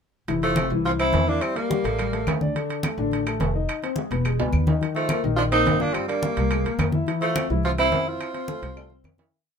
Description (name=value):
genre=Afro-Cuban jazz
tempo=212 BPM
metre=4/4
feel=straight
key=F major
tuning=A4 = 441 Hz
part: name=warm concert grand piano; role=accompaniment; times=0.3-9.3 s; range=D3 to F5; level=-27 LUFS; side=left 5 dB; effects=none
part: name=upright bass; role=bass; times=0.3-9.3 s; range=E1 to F2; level=-26 LUFS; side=right 1 dB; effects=none
part: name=congas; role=percussion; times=0.3-9.3 s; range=none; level=-27 LUFS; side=left 2 dB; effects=none
part: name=timbales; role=percussion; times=0.3-9.3 s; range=none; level=-32 LUFS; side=right 6 dB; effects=none
part: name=clear tenor saxophone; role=melody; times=0.4-2.4, 5.0-9.1 s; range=A3 to F4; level=-25 LUFS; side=right 1 dB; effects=none
part: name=growling tenor saxophone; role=second line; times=0.4-2.4, 5.0-9.1 s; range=F3 to D4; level=-30 LUFS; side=right 7 dB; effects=none
part: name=claves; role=percussion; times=0.6-9.2 s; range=none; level=-37 LUFS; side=left 2 dB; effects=none
room=light reverb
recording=minimal, uncompressed stereo recording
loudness=-21 LUFS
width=side -6 dB against mid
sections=0.3-9.3 A section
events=drum fill 4.4-4.8, 8.8-9.3; fade-out 7.5-9.3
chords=0.3 Fmaj7; 1.4 Edim; 2.0 Gmadd9/A; 2.6 Dm; 3.7 Emaj7#5; 4.3 E; 4.8 Eb69; 6.0 Gm7; 6.5 C7alt; 7.1 Fmaj7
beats=| 0.29 0.57 0.86 1.14 | 1.42 1.71 1.99 2.27 | 2.56 2.84 3.12 3.41 | 3.69 3.97 4.26 4.54 | 4.82 5.10 5.38 5.67 | 5.95 6.23 6.51 6.79 | 7.08 7.36 7.64 7.92 | 8.20 8.49 8.77 9.05